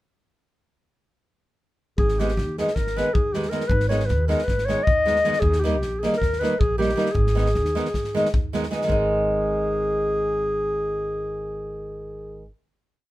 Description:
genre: balkan folk, Balkan wedding band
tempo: 312 BPM (eighths)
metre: 9/8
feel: straight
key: unclear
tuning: A4 = 440 Hz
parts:
  - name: dark clarinet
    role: melody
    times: 2.0-12.5 s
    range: G4 to D#5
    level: -24 LUFS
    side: left 1 dB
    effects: none
  - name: upright bass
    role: bass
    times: 2.0-12.5 s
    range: G#1 to D#2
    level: -27 LUFS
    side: equal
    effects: none
  - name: natural country drum kit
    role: percussion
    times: 2.0-9.1 s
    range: kick drum, snare drum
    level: -26 LUFS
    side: left 1 dB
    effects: none
  - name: nylon-string guitar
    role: accompaniment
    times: 2.2-12.5 s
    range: D#3 to D#4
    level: -25 LUFS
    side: right 1 dB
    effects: none
room: light reverb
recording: minimal, uncompressed stereo recording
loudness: -20 LUFS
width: side -16 dB against mid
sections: 2.0-8.9 A section; 8.9-12.3 final chord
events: none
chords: 2.0 G#m; 5.4 D#; 7.2 G#m; 8.9 G#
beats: | 1.98 2.17 2.36 2.55 2.74 2.93 3.12 3.32 3.51 | 3.70 3.89 4.08 4.27 4.46 4.66 4.85 5.04 5.23 | 5.42 5.61 5.81 6.00 6.19 6.38 6.58 6.77 6.96 | 7.16 7.35 7.54 7.73 7.93 8.12 8.31 8.51 8.70 | 8.89 9.09 9.28 9.47 9.67 9.86 10.05 10.24 10.44 | 10.63 10.82 11.01 11.21 11.40 11.59 11.78 11.97 12.16

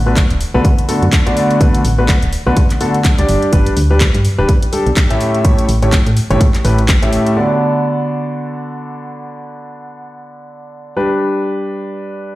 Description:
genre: piano house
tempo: 125 BPM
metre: 4/4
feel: swing 58% on 16ths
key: D major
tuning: A4 = 439 Hz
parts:
  - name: solid FM bass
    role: bass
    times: 0.0-7.2 s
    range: D1 to A2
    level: -14 LUFS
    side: equal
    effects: sidechain pumping
  - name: clear grand piano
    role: riff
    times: 0.1-12.4 s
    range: A2 to E5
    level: -16 LUFS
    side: equal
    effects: sidechain pumping, tape echo
  - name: electronic kick drum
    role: drums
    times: 0.2-7.0 s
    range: none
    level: -12 LUFS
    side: equal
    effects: none
  - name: house drum kit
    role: drums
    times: 0.2-7.3 s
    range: handclaps, hi-hat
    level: -22 LUFS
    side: equal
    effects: none
room: light reverb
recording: played on a big sound system in a bare room, stone room reverb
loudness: -11 LUFS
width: side -17 dB against mid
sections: 0.0-7.4 A section; 7.4-12.4 B section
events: none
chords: 0.0 D6; 3.3 G; 5.2 A7; 7.4 D6; 11.0 G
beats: 0.17 0.65 1.13 | 1.61 2.09 2.57 3.05 | 3.53 4.01 4.49 4.97 | 5.45 5.93 6.41 6.89 | 7.37 7.85 8.33 8.81 | 9.29 9.77 10.25 10.73 | 11.21 11.69 12.17

